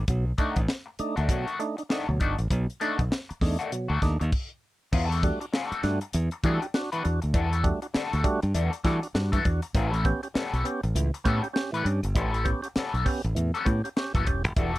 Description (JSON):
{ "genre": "funk", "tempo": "100 BPM", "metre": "4/4", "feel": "swing 60% on 16ths", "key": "E dorian", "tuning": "A4 = 440 Hz", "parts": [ { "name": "modern bright fingered electric bass", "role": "bass", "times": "0.0-14.8 s", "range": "E1 to E3", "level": "-26 LUFS", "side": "equal", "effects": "none" }, { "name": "percussive tonewheel organ", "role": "stabs", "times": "0.1-14.7 s", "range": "A2 to G4", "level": "-30 LUFS", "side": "right 2 dB", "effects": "slow rotary speaker" }, { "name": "tight funk drum kit", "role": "drums", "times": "0.1-14.8 s", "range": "crash cymbal, hi-hat, kick drum, snare drum", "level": "-28 LUFS", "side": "equal", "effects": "none" }, { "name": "electric guitar at the edge of break-up", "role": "accompaniment", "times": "0.4-14.8 s", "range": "D#3 to B4", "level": "-31 LUFS", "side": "left 4 dB", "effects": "wah, warbly pitch drift" } ], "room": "little or no reverb", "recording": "dry, close 1970s-style studio recording", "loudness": "-24 LUFS", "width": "side -16 dB against mid", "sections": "0.0-4.9 A section; 4.9-14.8 B section", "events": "stop 4.3-4.9", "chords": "0.1 B7#9; 4.9 Em11; 9.8 A9" }